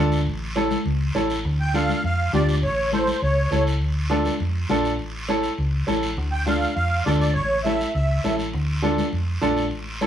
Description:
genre	latin, cumbia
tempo	203 BPM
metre	4/4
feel	straight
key	D harmonic minor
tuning	A4 = 440 Hz
part	clear upright piano	accompaniment	0.0-10.1 s	C#4 to A4	-24 LUFS	right 1 dB	none
part	hollow-body short-scale fingered electric bass	bass	0.0-10.1 s	A1 to F2	-24 LUFS	equal	none
part	guiro	percussion	0.1-10.1 s	none	-34 LUFS	right 1 dB	none
part	congas	percussion	0.6-10.1 s	none	-30 LUFS	left 5 dB	none
part	musette accordion	melody	1.6-3.6, 6.3-8.4 s	C5 to G5	-24 LUFS	right 1 dB	none
room	moderate studio reverb, RT60 0.7 s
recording	band playing live in one room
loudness	-20 LUFS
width	side -10 dB against mid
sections	0.0-10.1 A section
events	none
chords	0.3 A; 1.4 Dm; 2.6 A; 3.8 Dm; 5.0 A; 6.2 Dm; 7.4 A; 8.5 Dm

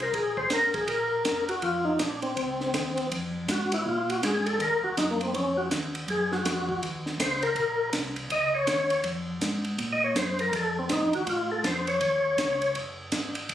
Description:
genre	soul jazz organ trio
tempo	162 BPM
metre	4/4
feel	swing 63% on 8ths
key	Bb minor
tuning	A4 = 439 Hz
part	percussive tonewheel organ	melody	0.0-12.7 s	Bb3 to Eb5	-26 LUFS	left 1 dB	slow rotary speaker, overdrive, chorus vibrato
part	mellow tonewheel organ	bass	0.0-13.5 s	F1 to Bb2	-35 LUFS	equal	chorus vibrato, slow rotary speaker
part	compact cocktail drum kit	drums	0.0-13.5 s	hi-hat, kick drum, ride cymbal, snare drum	-31 LUFS	right 1 dB	none
room	wet studio reverb, RT60 0.9 s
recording	recorded on a phone in the room, studio reverb, compression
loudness	-25 LUFS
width	side -11 dB against mid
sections	0.0-13.5 A section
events	tonewheel organ solo 0.0-13.5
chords	0.0 Bbm7; 4.6 Ebm7; 9.0 Bb5; 10.5 F7; 12.0 Ebm7

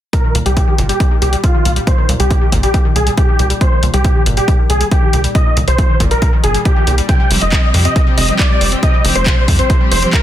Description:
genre	uplifting trance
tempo	138 BPM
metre	4/4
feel	straight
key	C minor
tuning	A4 = 440 Hz
part	big supersaw lead	melody	0.1-10.2 s	F4 to G5	-18 LUFS	equal	sidechain pumping, low-pass filter, ping-pong delay
part	analog pluck	arpeggios	0.1-10.2 s	Bb2 to C4	-22 LUFS	left 2 dB	chorus, sidechain pumping, tape echo
part	electronic kick drum	drums	0.1-10.2 s	none	-13 LUFS	equal	none
part	punchy analog drum machine	drums	0.1-10.2 s	handclaps, hi-hat	-20 LUFS	left 1 dB	none
part	tight sequencer bass	bass	0.3-10.1 s	F1 to F2	-15 LUFS	equal	tube saturation, sidechain pumping
part	rich symphonic string section	sustained chords	7.1-10.2 s	F3 to G4	-21 LUFS	right 1 dB	sidechain pumping
room	little or no reverb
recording	dense, heavily limited modern master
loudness	-10 LUFS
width	side -12 dB against mid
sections	0.1-10.2 A section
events	none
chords	0.1 Cm7; 7.1 Fsus2

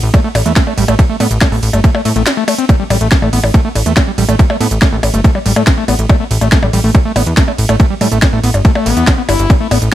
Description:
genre	psychedelic trance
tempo	141 BPM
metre	4/4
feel	straight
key	unclear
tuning	A4 = 440 Hz
part	plucky analog bass	bass	0.0-9.9 s	G1 to A2	-13 LUFS	equal	none
part	techno drum kit	drums	0.0-9.9 s	hi-hat, percussion blips, ride cymbal, snare drum	-17 LUFS	equal	none
part	screaming distorted acid line	riff	0.1-9.8 s	G3 to E4	-17 LUFS	moving between left 7 dB and right 8 dB	distortion, chorus, auto-pan, sidechain pumping, digital delay
part	electronic kick drum	drums	0.1-9.6 s	none	-10 LUFS	equal	none
room	little or no reverb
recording	none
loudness	-9 LUFS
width	side -13 dB against mid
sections	0.0-9.9 A section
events	none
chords	0.0 A5

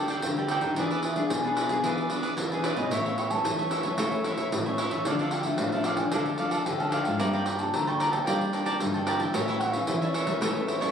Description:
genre	samba and choro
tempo	112 BPM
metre	4/4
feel	straight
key	unclear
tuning	A4 = 440 Hz
part	cavaquinho	accompaniment	0.0-10.9 s	D4 to A5	-31 LUFS	right 4 dB	none
part	nylon-string guitar	accompaniment	0.0-10.9 s	A2 to A4	-31 LUFS	left 4 dB	none
part	pandeiro	percussion	0.1-10.9 s	none	-31 LUFS	right 1 dB	none
part	nylon-string guitar	bass	0.2-10.6 s	G2 to A3	-32 LUFS	left 1 dB	none
part	mellow bansuri	melody	1.0-10.9 s	A4 to C#6	-31 LUFS	equal	none
room	moderate small room reverb, RT60 0.6 s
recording	recorded on a phone in the room, club reverb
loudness	-25 LUFS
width	side -7 dB against mid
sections	0.0-10.9 A section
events	bansuri solo 0.0-10.9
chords	0.0 Gsus2/D; 0.8 E7; 2.9 A; 5.1 Dm; 7.2 Gmadd9; 9.3 A

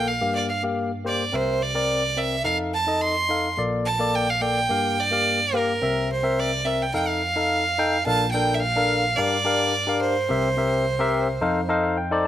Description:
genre	soul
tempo	107 BPM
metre	4/4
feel	straight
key	Bb major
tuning	A4 = 442 Hz
part	clear fiddle	melody	0.0-11.7 s	Bb4 to C6	-23 LUFS	right 3 dB	none
part	barky tine electric piano	accompaniment	0.0-12.3 s	Bb1 to G5	-23 LUFS	left 2 dB	none
room	moderate echo chamber reverb, RT60 2.0 s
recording	dark, warm production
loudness	-20 LUFS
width	side -12 dB against mid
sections	0.0-8.1 A section; 8.1-12.3 B section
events	fiddle solo 0.0-8.1; tine electric piano fill 11.4-12.3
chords	0.2 Gm7; 1.3 C7; 2.5 F7; 3.6 Bbmaj7; 4.7 Gm7; 5.8 C7; 6.9 F7; 8.1 Bbmaj7; 9.2 Gm7; 10.3 C7; 11.4 F7

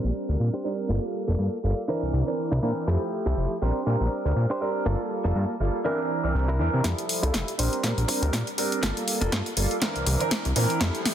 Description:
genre	filtered disco house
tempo	121 BPM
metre	4/4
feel	swing 56% on 16ths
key	unclear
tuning	A4 = 440 Hz
part	warm baby grand piano	accompaniment	0.0-11.1 s	E3 to Bb4	-28 LUFS	right 2 dB	phaser, vintage 12-bit sampler grit, sidechain pumping, low-pass filter
part	direct-recorded clean electric guitar	riff	0.0-11.0 s	Bb3 to C5	-33 LUFS	equal	sidechain pumping, low-pass filter
part	fat analog bass	bass	0.0-10.9 s	F1 to C3	-25 LUFS	equal	sidechain pumping, low-pass filter
part	electronic kick drum	drums	6.8-10.9 s	none	-36 LUFS	equal	high-pass filter on kick, small room ambience
part	house drum kit	drums	6.8-11.1 s	hi-hat, snare drum	-27 LUFS	left 1 dB	sidechain pumping on hats, small room ambience, soft clipping on snare
room	light reverb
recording	dense, heavily limited modern master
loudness	-23 LUFS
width	side -10 dB against mid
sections	0.0-6.8 A section; 6.8-11.1 B section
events	filter sweep 0.0-6.8, 6.8-11.1; build-up 6.8-11.1; drum fill 6.8-11.1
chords	0.0 Bb69; 0.9 Gm9; 1.9 C9; 2.9 Fmaj9; 3.6 Bb69; 4.9 Gm9; 5.9 C9; 6.8 Fmaj9; 7.6 Bb69; 8.8 Gm9; 9.8 C9

